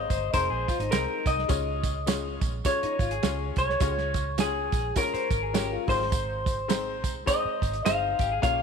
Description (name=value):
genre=uptempo 1960s-style soul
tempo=104 BPM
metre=4/4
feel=swing 59% on 8ths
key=unclear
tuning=A4 = 440 Hz
part: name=electric guitar through a small old amp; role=melody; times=0.0-8.6 s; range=Ab4 to F5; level=-28 LUFS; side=left 1 dB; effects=none
part: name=clear upright piano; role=accompaniment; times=0.0-8.6 s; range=Ab3 to Db5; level=-33 LUFS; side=left 10 dB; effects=none
part: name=vintage muted fingered electric bass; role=bass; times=0.0-8.6 s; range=F1 to Db2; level=-33 LUFS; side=right 1 dB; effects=none
part: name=electric guitar through a small old amp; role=riff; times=0.1-8.6 s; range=Eb4 to C5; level=-36 LUFS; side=left 12 dB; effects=none
part: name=warm soul drum kit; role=drums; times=0.1-8.6 s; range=hi-hat, kick drum, snare drum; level=-29 LUFS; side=right 4 dB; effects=none
part: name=tambourine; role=percussion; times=0.1-8.6 s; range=none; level=-40 LUFS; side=right 15 dB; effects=none
room=light reverb, studio reverb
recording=1960s-style stereo with parts hard left and right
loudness=-24 LUFS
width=side -6 dB against mid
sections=0.0-8.6 A section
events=none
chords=0.0 Ab; 1.5 Db; 5.8 Ab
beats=0.34 0.92 | 1.50 2.08 2.65 3.23 | 3.81 4.39 4.97 5.54 | 6.12 6.70 7.28 7.86 | 8.44